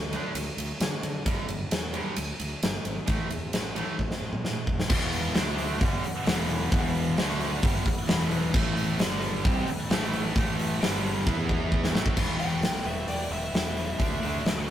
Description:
hard rock; 132 BPM; 4/4; straight; E minor; A4 = 438 Hz
fuzz fingered electric bass; bass; 0.0-14.7 s; E1 to D3; -34 LUFS; equal; overdrive
sludgy distorted guitar; riff; 0.1-14.4 s; E2 to E4; -34 LUFS; left 3 dB; overdrive
tight distorted guitar; riff; 0.1-14.4 s; E2 to E4; -33 LUFS; right 4 dB; distortion
huge arena drum kit; drums; 0.1-14.7 s; crash cymbal, hi-hat, kick drum, ride cymbal, snare drum, toms; -27 LUFS; equal
phased analog pad; sustained chords; 4.9-14.7 s; E3 to G5; -40 LUFS; left 1 dB
scooped high-gain guitar; riff; 4.9-14.7 s; E2 to E4; -37 LUFS; equal
bluesy overdriven lead guitar; melody; 12.4-14.7 s; D5 to G5; -34 LUFS; equal; distortion
light reverb; rough rehearsal-room recording, warm saturation; -25 LUFS; side -11 dB against mid
0.0-4.9 A section; 4.9-12.2 B section; 12.2-14.7 C section
drum fill 4.0-4.9, 11.3-12.2; lead electric guitar solo 12.2-14.7
0.0 D5; 1.3 G5; 3.1 A5; 4.9 E5; 5.4 D5; 5.8 Em; 7.2 D5; 7.6 Em; 8.5 A5; 9.0 G5; 9.4 A5; 10.8 G5; 11.3 E5; 11.9 A5; 12.2 Em; 14.0 D5

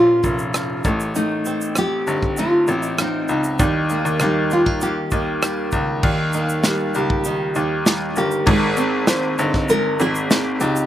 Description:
acoustic pop; 98 BPM; 4/4; straight; Ab major; A4 = 438 Hz
nylon-string guitar; melody; 0.0-10.9 s; Eb4 to C5; -21 LUFS; equal; slapback echo
fingerpicked steel-string acoustic guitar; accompaniment; 0.0-10.9 s; Bb2 to G4; -23 LUFS; equal; double-tracked left and right, slapback echo
bluegrass banjo; arpeggios; 0.0-10.9 s; Eb3 to G4; -32 LUFS; right 4 dB; slapback echo
bright grand piano; bass; 0.0-10.9 s; F1 to Eb2; -22 LUFS; left 1 dB
natural country drum kit; drums; 0.2-10.9 s; crash cymbal, kick drum, rim click, shaker, snare drum; -22 LUFS; equal
little or no reverb; recorded outdoors, with no room sound; -17 LUFS; side -12 dB against mid
0.0-6.0 A section; 6.0-8.5 B section; 8.5-10.9 C section
0.0 Bbm; 0.8 F7; 3.6 Eb; 8.5 Abadd9

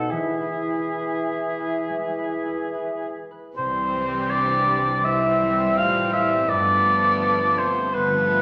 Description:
classical, slow romantic movement for symphony orchestra; 66-84 BPM; 4/4; rubato; E major, C major from 3.6 s; A4 = 438 Hz
dark clarinet; second line; 0.0-3.2 s; D#4 to E4; -33 LUFS; equal
mellow cor anglais; second line; 0.0-8.4 s; G#4 to F5; -24 LUFS; equal
silver concert flute; second line; 0.0-3.2 s; E5 to F#5; -34 LUFS; equal
dark bassoon; accompaniment; 0.0-3.2 s; B2 to E3; -34 LUFS; equal
concert harp; arpeggios; 0.0-8.4 s; G2 to C5; -36 LUFS; equal
warm symphonic violin section; melody; 3.6-8.4 s; B3 to C4; -32 LUFS; equal
warm symphonic violin section; second line; 3.6-8.4 s; G3 to A3; -36 LUFS; equal
dark symphonic viola section; accompaniment; 3.6-8.4 s; E3 to F3; -35 LUFS; equal
mellow French horn section; sustained chords; 3.6-8.4 s; B3 to F4; -35 LUFS; equal
warm studio cello section; bass; 3.6-8.4 s; G2 to C3; -37 LUFS; equal
warm symphonic double bass section; bass; 3.6-8.4 s; G1 to C2; -36 LUFS; equal
wet recital hall reverb, RT60 1.3 s; -22 LUFS; mono
0.0-3.6 A section; 3.6-8.4 B section
0.1 E; 3.6 C; 6.5 G9

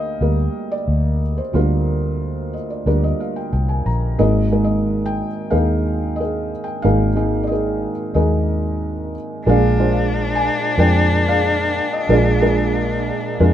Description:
folk; 91 BPM; 4/4; straight; A4 = 444 Hz
felt-muted upright piano; melody; 0.0-13.5 s; Ab1 to Bb5; -19 LUFS; right 2 dB
vintage muted fingered electric bass; bass; 0.2-13.5 s; Ab1 to F2; -19 LUFS; left 1 dB
warm cello; second line; 9.5-13.5 s; D4; -21 LUFS; left 3 dB
light reverb; minimal, uncompressed stereo recording; -16 LUFS; side -11 dB against mid
0.0-4.2 A section; 4.2-13.5 B section
felt piano fill 2.2-4.2
0.0 Gm/D; 4.2 Absus2; 9.5 Bb7

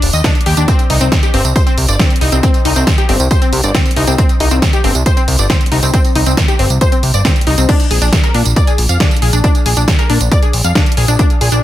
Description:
uplifting trance; 137 BPM; 4/4; straight; A4 = 440 Hz
fat analog bass; bass; 0.0-11.6 s; Eb1 to Bb2; -13 LUFS; equal; sidechain pumping
big-room dance drum kit; drums; 0.0-11.6 s; crash cymbal, hi-hat, snare drum, tambourine; -17 LUFS; right 1 dB
wide unison pluck; arpeggios; 0.1-11.6 s; C4 to F5; -17 LUFS; left 2 dB; sidechain pumping, tape echo
electronic kick drum; drums; 0.2-11.3 s; -13 LUFS; equal
digital ambience; -10 LUFS; side -13 dB against mid
0.0-11.6 A section
0.0 Ebmaj7; 0.7 Cm; 7.7 Bb7

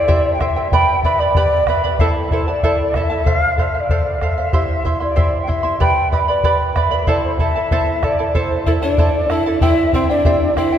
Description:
andean folk, Andean ensemble; 94 BPM; 2/4; straight; A minor; A4 = 440 Hz
mellow quena; melody; 0.0-10.8 s; C5 to G5; -19 LUFS; left 1 dB
charango; accompaniment; 0.0-10.8 s; E4 to C6; -20 LUFS; right 4 dB
bombo; percussion; 0.1-10.7 s; -18 LUFS; left 1 dB
breathy mellow pan flute; second line; 8.7-10.8 s; C4 to E4; -21 LUFS; right 1 dB
wet cathedral reverb, RT60 5.1 s; recorded in a church or concert hall; -14 LUFS; side -9 dB against mid
0.0-9.6 A section; 9.6-10.8 A section
0.0 C; 0.7 G; 2.0 Am; 3.3 F; 4.5 C; 5.8 G; 7.1 Am; 9.6 C

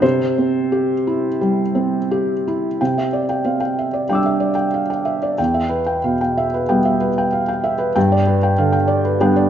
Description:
neoclassical minimalist piano; 85-95 BPM; 4/4; rubato; C major; A4 = 440 Hz
felt-muted upright piano; solo; 0.0-9.5 s; E2 to E6; -16 LUFS; equal
moderate recital hall reverb, RT60 1.4 s; recorded in a church or concert hall, nothing above 7.9 kHz; -16 LUFS; side -9 dB against mid
0.0-2.8 A section; 2.8-9.5 B section
0.0 C; 2.8 Cadd9; 5.4 Em; 8.0 G

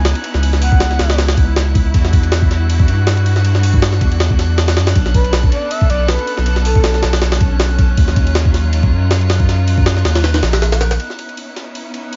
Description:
drum and bass, jungle; 159 BPM; 4/4; swing 54% on 16ths; A4 = 440 Hz
clear symphonic string section; sustained chords; 0.0-12.2 s; F#3 to A4; -28 LUFS; equal
saturated sub bass; bass; 0.0-11.0 s; A#1 to G2; -17 LUFS; equal; tube saturation
drifting glass-harmonics texture; texture; 0.0-12.2 s; F#6; -32 LUFS; equal; chorus, built-in reverb
jungle sampler-style drum kit; drums; 0.1-12.2 s; hi-hat, kick drum, ride cymbal, snare drum; -18 LUFS; equal; high-pass filter on kick, studio reverb, high-pass filter on cymbals, high-pass filter on snare, high-pass filter on hats
breathy flute-like synth lead; melody; 0.6-1.1, 5.1-7.0 s; A4 to F#5; -25 LUFS; equal; chorus, dub echo
little or no reverb; vinyl crackle, nothing above 7.5 kHz; -14 LUFS; mono
0.0-11.0 A section; 11.0-12.2 B section
drop 0.0-11.0
0.0 C#m9; 1.9 Em9; 5.0 Bm9; 8.0 D#m9; 11.0 C#m9

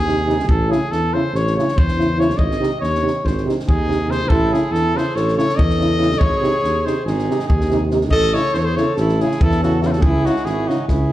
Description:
balkan folk, Balkan brass band; 283 BPM (eighths); 9/8; straight; A4 = 440 Hz
warm trumpet; melody; 0.0-11.1 s; F#4 to D#5; -22 LUFS; left 1 dB; slapback echo
mellow tuba; bass; 0.0-11.1 s; G#1 to E2; -20 LUFS; equal
mellow French horn; accompaniment; 0.1-10.8 s; D#4 to E4; -24 LUFS; left 2 dB; slapback echo
warm trombone; accompaniment; 0.1-10.8 s; B#2 to C#3; -26 LUFS; right 5 dB; slapback echo
compact cocktail drum kit; percussion; 0.1-11.0 s; kick drum, snare drum; -21 LUFS; equal
clear alto saxophone; second line; 3.7-11.1 s; D#4 to A4; -24 LUFS; right 2 dB; slapback echo
light reverb, small room reverb; live gig heard through the venue's PA, club reverb; -15 LUFS; side -14 dB against mid
0.0-11.1 A section
0.5 A; 2.4 G#; 4.3 A; 6.2 G#; 8.1 A; 10.0 C#m

